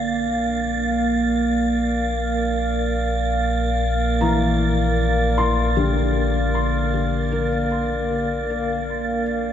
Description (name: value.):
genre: ambient.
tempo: free time.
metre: none.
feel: none.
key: Bb lydian.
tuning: A4 = 440 Hz.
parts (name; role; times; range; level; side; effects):
warbly tape-like pad; sustained chords; 0.0-9.5 s; Bb3 to F5; -22 LUFS; right 1 dB; chorus, built-in reverb.
felt-muted upright piano; arpeggios; 0.0-9.5 s; D3 to C6; -25 LUFS; left 4 dB; ping-pong delay.
deep rumbling drone; bass; 0.1-9.5 s; Bb1; -24 LUFS; equal; built-in reverb.
wind-like tuned noise texture; texture; 0.0-9.5 s; A6; -30 LUFS; right 5 dB; built-in reverb.
room: wet lush hall reverb, RT60 2.8 s.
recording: cassette tape.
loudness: -19 LUFS.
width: side -9 dB against mid.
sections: 0.0-9.5 A section.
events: none.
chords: 0.0 Bbmaj7.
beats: free time.